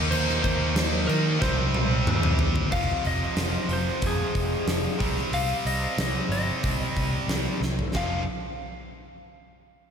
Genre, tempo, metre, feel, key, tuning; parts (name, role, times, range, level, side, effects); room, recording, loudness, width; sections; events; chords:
hard rock; 92 BPM; 4/4; straight; F minor; A4 = 440 Hz
tight distorted guitar; riff; 0.0-8.2 s; F2 to Eb4; -29 LUFS; equal; distortion, slapback echo
picked electric bass; bass; 0.0-8.2 s; F1 to Eb3; -28 LUFS; equal
lightly driven lead guitar; melody; 0.1-8.3 s; Ab4 to F5; -31 LUFS; left 1 dB; slapback echo
huge arena drum kit; drums; 0.1-8.1 s; china cymbal, crash cymbal, hi-hat, kick drum, snare drum, toms; -28 LUFS; equal
moderate lush hall reverb, RT60 3.1 s; big arena sound; -23 LUFS; side -7 dB against mid
0.0-2.7 A section; 2.7-7.9 B section; 7.9-9.9 C section
drum fill 1.4-2.7, 7.6-7.9
0.0 Eb5; 1.4 Cm; 2.7 Fm; 5.0 Cm; 7.9 F5